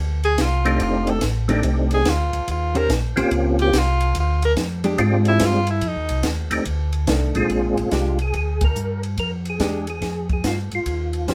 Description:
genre	soul jazz organ trio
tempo	143 BPM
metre	4/4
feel	swing 65% on 8ths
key	Bb mixolydian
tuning	A4 = 442 Hz
part	mellow tonewheel organ	bass	0.0-11.3 s	F1 to Ab2	-24 LUFS	equal	slow rotary speaker
part	clear tenor saxophone	melody	0.2-6.3 s	Eb4 to Bb4	-24 LUFS	equal	none
part	compact cocktail drum kit	drums	0.2-11.3 s	hi-hat, kick drum, ride cymbal, snare drum	-29 LUFS	equal	none
part	percussive tonewheel organ	melody	0.6-11.3 s	Bb2 to Bb4	-25 LUFS	equal	slow rotary speaker, chorus vibrato
part	hollow-body jazz guitar	accompaniment	1.5-11.3 s	Eb3 to C5	-26 LUFS	equal	none
room	light reverb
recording	band playing live in one room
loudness	-21 LUFS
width	mono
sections	0.0-7.5 A section; 7.5-11.3 B section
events	tenor saxophone solo 0.0-7.5; band accent 8.6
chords	0.0 Bb13 (rootless); 0.8 F13; 2.5 Eb13; 4.2 Bb13/D (rootless); 5.8 F13; 7.5 Bb13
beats	0.39 | 0.80 1.22 1.64 2.06 | 2.48 2.90 3.31 3.73 | 4.15 4.57 4.99 5.41 | 5.83 6.25 6.67 7.09 | 7.50 7.92 8.35 8.76 | 9.18 9.60 10.02 10.44 | 10.86 11.28

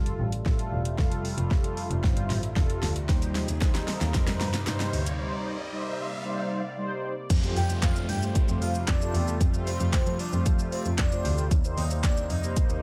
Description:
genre	dance-pop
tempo	114 BPM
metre	4/4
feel	straight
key	F major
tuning	A4 = 440 Hz
part	mellow synth brass	accompaniment	0.0-12.8 s	G3 to C5	-37 LUFS	equal	chorus, sidechain pumping
part	sweeping resonant pad	sustained chords	0.0-12.8 s	C3 to D5	-40 LUFS	equal	chorus, phaser, sidechain pumping
part	clear double bass	bass	0.0-12.8 s	E1 to F3	-31 LUFS	equal	sidechain pumping
part	riser and downlifter	sound effects	1.2-11.5 s	none	-43 LUFS	equal	none
part	deep house drum kit	drums	0.1-12.8 s	crash cymbal, handclaps, hi-hat, kick drum, shaker, snare drum	-29 LUFS	equal	none
part	group handclap	percussion	3.6-4.8 s	none	-46 LUFS	equal	none
part	airy dreamy lead	melody	7.6-12.4 s	C5 to G5	-38 LUFS	equal	chorus, sidechain pumping
room	little or no reverb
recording	none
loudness	-27 LUFS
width	mono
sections	0.0-7.3 A section; 7.3-12.8 B section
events	build-up 0.0-7.3; drum fill 0.0-5.2; riser 1.2-7.3; break 5.2-7.3; drop 7.3-12.8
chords	0.0 Fadd9; 3.1 Eb6; 7.3 Fadd9; 11.5 Eb6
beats	0.46 | 0.98 1.51 2.04 2.56 | 3.09 3.62 4.14 4.67 | 5.20 5.72 6.25 6.77 | 7.30 7.83 8.35 8.88 | 9.41 9.93 10.46 10.98 | 11.51 12.04 12.56

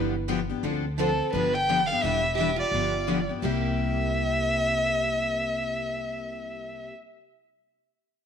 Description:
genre	acoustic string swing (jazz manouche)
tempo	172 BPM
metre	4/4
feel	swing 60% on 8ths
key	C mixolydian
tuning	A4 = 437 Hz
part	picked steel-string acoustic guitar	accompaniment	0.0-7.0 s	C3 to B4	-31 LUFS	left 10 dB	none
part	picked steel-string acoustic guitar	accompaniment	0.0-6.9 s	C3 to B4	-36 LUFS	right 11 dB	none
part	upright bass	bass	0.0-6.9 s	E1 to D2	-32 LUFS	equal	none
part	warm violin	melody	1.0-6.9 s	A4 to G5	-27 LUFS	equal	none
part	picked steel-string acoustic guitar	second line	1.0-6.9 s	C4 to B4	-34 LUFS	right 8 dB	none
room	moderate echo chamber reverb, RT60 1.6 s, small room ambience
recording	1960s-style stereo with parts hard left and right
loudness	-24 LUFS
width	side -7 dB against mid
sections	0.0-3.4 A section; 3.4-6.2 B section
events	none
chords	0.0 G7; 0.6 Dm7; 1.3 G7; 2.0 Em7; 2.7 G7; 3.4 C7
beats	0.28 | 0.63 0.98 1.33 1.68 | 2.03 2.38 2.73 3.08 | 3.43 3.78 4.13 4.48 | 4.83 5.18 5.53 5.88

